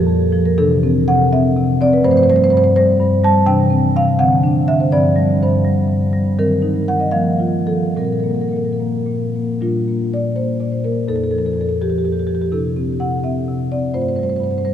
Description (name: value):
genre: classical, contemporary piece for solo marimba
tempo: 82 BPM (dotted quarters)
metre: 6/8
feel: rubato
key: Bb major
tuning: A4 = 437 Hz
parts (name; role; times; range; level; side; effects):
- marimba with soft mallets; solo; 0.0-14.7 s; F2 to A5; -14 LUFS; equal; none
room: wet cathedral reverb, RT60 5.3 s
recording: none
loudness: -14 LUFS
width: side -10 dB against mid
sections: 0.0-9.6 A section; 9.6-14.7 B section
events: none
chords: 0.0 Fsus2; 0.6 C69; 2.0 G11; 3.5 Cadd9; 4.2 D9; 4.9 G7sus4; 6.4 Ebm6; 7.1 Fsus24; 8.0 Bbsus2; 9.6 Bb6; 11.1 F11; 12.5 C69; 13.9 G11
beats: | 0.57 1.31 | 2.04 2.75 | 3.47 4.19 | 4.92 5.64 | 6.38 7.14 | 7.96 8.79 | 9.60 10.35 | 11.08 11.81 | 12.53 13.24 | 13.95 14.66